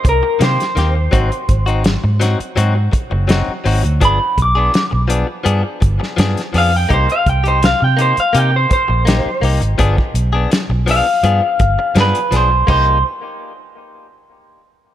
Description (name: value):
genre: straight-eighth soul blues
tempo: 83 BPM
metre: 4/4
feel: straight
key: C minor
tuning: A4 = 440 Hz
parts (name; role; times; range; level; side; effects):
- electric guitar through a small old amp; melody; 0.0-13.0 s; Bb4 to D6; -16 LUFS; equal; none
- direct-recorded clean electric guitar; stabs; 0.0-13.0 s; Eb3 to Ab4; -21 LUFS; left 4 dB; analog delay
- vintage muted fingered electric bass; bass; 0.0-13.0 s; Gb1 to C3; -15 LUFS; equal; none
- warm soul drum kit; drums; 0.0-12.9 s; crash cymbal, hi-hat, kick drum, snare drum; -18 LUFS; equal; none
room: light reverb, small room ambience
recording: none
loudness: -12 LUFS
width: side -12 dB against mid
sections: 0.0-12.7 A section; 12.7-14.9 B section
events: none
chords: 0.0 Cm7; 1.1 Ab7; 4.0 G7b9; 6.9 Cm7; 9.8 G7b9; 12.7 Cm7